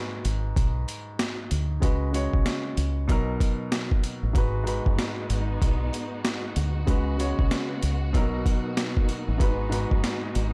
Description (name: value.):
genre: hip hop, boom-bap hip-hop.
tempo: 95 BPM.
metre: 4/4.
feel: swing 61% on 16ths.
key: G# minor.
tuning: A4 = 440 Hz.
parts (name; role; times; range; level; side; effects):
warm grand piano; accompaniment; 0.0-10.5 s; G#2 to C#5; -33 LUFS; equal; high-pass filter, low-pass filter.
deep dub fingered electric bass; bass; 0.2-10.5 s; F#1 to D2; -29 LUFS; equal; none.
boom bap sampler-style drum kit; drums; 0.2-10.5 s; hi-hat, kick drum, snare drum; -28 LUFS; equal; none.
sleigh bells; percussion; 0.2-10.5 s; none; -48 LUFS; equal; none.
warm studio string section; sustained chords; 4.3-10.5 s; C#3 to F#4; -38 LUFS; equal; high-pass filter, low-pass filter.
room: little or no reverb.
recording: dark, warm production.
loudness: -26 LUFS.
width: mono.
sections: 0.0-10.5 A section.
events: none.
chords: 0.0 G#m7; 1.8 C#7sus4; 3.1 Bmaj7; 4.3 G#m7; 6.9 C#7sus4; 8.1 Bmaj7; 9.4 G#m7.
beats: 0.56 1.19 | 1.82 2.46 3.09 3.72 | 4.35 4.98 5.61 6.24 | 6.88 7.51 8.14 8.77 | 9.40 10.03.